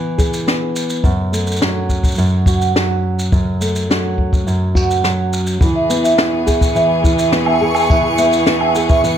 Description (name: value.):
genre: folktronica.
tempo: 105 BPM.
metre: 4/4.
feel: straight.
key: E major.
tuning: A4 = 440 Hz.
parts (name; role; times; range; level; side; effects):
nylon-string guitar; arpeggios; 0.0-9.2 s; F#2 to G#4; -17 LUFS; right 1 dB; tape echo.
kick drum; drums; 0.2-9.0 s; none; -17 LUFS; equal; none.
shaker, snare drum and woodblock; drums; 0.2-9.2 s; none; -21 LUFS; equal; none.
rich string quartet; sustained chords; 5.6-9.2 s; E2 to G#4; -22 LUFS; left 1 dB; none.
backwards swelling texture; texture; 5.6-9.2 s; C#6; -26 LUFS; right 2 dB; built-in reverb.
marimba with soft mallets; second line; 5.8-9.0 s; E5; -16 LUFS; right 1 dB; tape echo.
room: light reverb, small room ambience.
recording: none.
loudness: -13 LUFS.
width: side -9 dB against mid.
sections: 0.0-5.6 A section; 5.6-9.2 B section.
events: kick drops out 5.0-5.6.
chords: 0.0 E; 1.0 F#m; 5.6 E.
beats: 0.47 | 1.04 1.61 2.18 2.75 | 3.33 3.90 4.47 5.04 | 5.61 6.18 6.75 7.33 | 7.90 8.47 9.04.